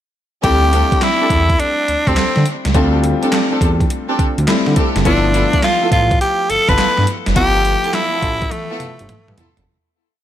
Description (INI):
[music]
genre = R&B, new jack swing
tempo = 104 BPM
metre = 4/4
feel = swing 66% on 16ths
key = unclear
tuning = A4 = 442 Hz
[part]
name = raspy tenor saxophone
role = melody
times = 0.4-9.4 s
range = A3 to B4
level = -16 LUFS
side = equal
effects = ping-pong delay
[part]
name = clear baby grand piano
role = accompaniment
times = 0.4-9.7 s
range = F3 to F4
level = -22 LUFS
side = left 5 dB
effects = none
[part]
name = rich studio string section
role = stabs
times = 0.4-9.6 s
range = B3 to A4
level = -22 LUFS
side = right 1 dB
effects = ping-pong delay
[part]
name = smooth synth bass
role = bass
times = 0.4-9.7 s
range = F#1 to D3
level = -18 LUFS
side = equal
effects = none
[part]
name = gated 80s digital drum machine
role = drums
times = 0.4-9.7 s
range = handclaps, hi-hat, kick drum, snare drum, toms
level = -18 LUFS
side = right 1 dB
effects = gated reverb, gated reverb snare, overdrive
[sound]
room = studio ambience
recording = none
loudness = -13 LUFS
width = side -11 dB against mid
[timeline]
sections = 0.4-9.7 verse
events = fade-out 7.4-9.7; drum fill 8.5-9.7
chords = 0.4 D7sus4; 5.1 G13